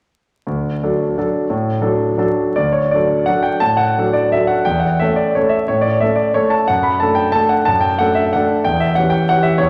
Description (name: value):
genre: classical, piano waltz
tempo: 144-195 BPM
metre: 3/4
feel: rubato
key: D major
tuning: A4 = 440 Hz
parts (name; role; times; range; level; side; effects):
- clear concert grand piano; solo; 0.5-9.7 s; D2 to B5; -16 LUFS; equal; none
room: wet scoring stage reverb, RT60 2.1 s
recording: vinyl crackle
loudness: -16 LUFS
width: mono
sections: 0.4-2.6 A section; 2.6-9.7 B section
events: none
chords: 0.4 D; 4.7 A/E; 6.7 D/F#; 8.6 C#dim/E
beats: | 0.45 0.82 1.16 | 1.49 1.81 2.17 | 2.57 2.93 3.28 | 3.63 3.97 4.32 | 4.67 5.01 5.36 | 5.70 6.02 6.35 | 6.68 7.01 7.34 | 7.67 7.99 8.33 | 8.65 8.96 9.28 | 9.59